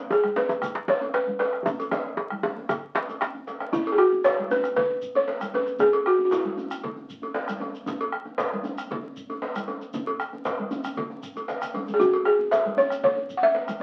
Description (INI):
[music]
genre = west african traditional, West African drum ensemble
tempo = 116 BPM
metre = 4/4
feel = straight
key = E major pentatonic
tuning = A4 = 440 Hz
[part]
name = balafon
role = melody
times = 0.1-7.3, 11.9-13.8 s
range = E4 to F#5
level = -24 LUFS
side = equal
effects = none
[part]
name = congas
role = percussion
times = 0.1-13.8 s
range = none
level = -40 LUFS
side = equal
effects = none
[part]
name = cowbell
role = percussion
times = 0.1-13.5 s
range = none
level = -36 LUFS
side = equal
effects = none
[part]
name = djembe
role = percussion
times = 0.1-3.3 s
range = none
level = -30 LUFS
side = equal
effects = none
[part]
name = shekere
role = percussion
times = 0.1-13.8 s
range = none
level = -50 LUFS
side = equal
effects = none
[part]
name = bombo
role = percussion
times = 0.2-13.8 s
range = none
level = -36 LUFS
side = equal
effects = none
[part]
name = djembe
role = percussion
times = 0.4-13.8 s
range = none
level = -35 LUFS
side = equal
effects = none
[sound]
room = moderate studio ambience, RT60 0.5 s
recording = very old 78 rpm record, vinyl crackle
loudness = -26 LUFS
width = mono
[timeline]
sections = 0.0-3.7 A section; 3.7-13.8 B section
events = drum fill 1.7-3.7, 11.5-12.0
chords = none